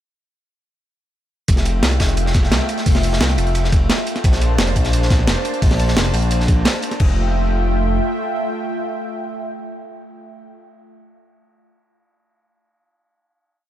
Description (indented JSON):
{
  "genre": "liquid drum and bass",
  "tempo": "174 BPM",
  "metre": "4/4",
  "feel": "straight",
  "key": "F major",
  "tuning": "A4 = 440 Hz",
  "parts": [
    { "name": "lush unison pad", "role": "sustained chords", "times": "1.5-10.5 s", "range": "A3 to A5", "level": "-24 LUFS", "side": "equal", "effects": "chorus, sidechain pumping" },
    { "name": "smooth synth bass", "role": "bass", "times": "1.5-8.0 s", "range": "F1 to C2", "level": "-18 LUFS", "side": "equal", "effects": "none" },
    { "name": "breakbeat sampler-style drum kit", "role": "drums", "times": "1.5-7.1 s", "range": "crash cymbal, hi-hat, snare drum", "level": "-22 LUFS", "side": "right 1 dB", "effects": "none" },
    { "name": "crunchy breakbeat drum kit", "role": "drums", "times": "1.5-6.9 s", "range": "hi-hat, ride cymbal, snare drum", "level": "-27 LUFS", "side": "equal", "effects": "high-pass filter on cymbals, high-pass filter on hats, high-pass filter on snare, high-pass filter on room" },
    { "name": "electronic kick drum", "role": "drums", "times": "1.5-7.1 s", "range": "none", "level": "-16 LUFS", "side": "equal", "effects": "none" }
  ],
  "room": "little or no reverb",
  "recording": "none",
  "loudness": "-15 LUFS",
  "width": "side -12 dB against mid",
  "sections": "1.5-7.0 drop; 7.0-9.8 final chord",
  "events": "drop 1.5-7.0",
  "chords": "1.5 Fmaj9; 4.2 Bbmaj9; 7.0 Fmaj9"
}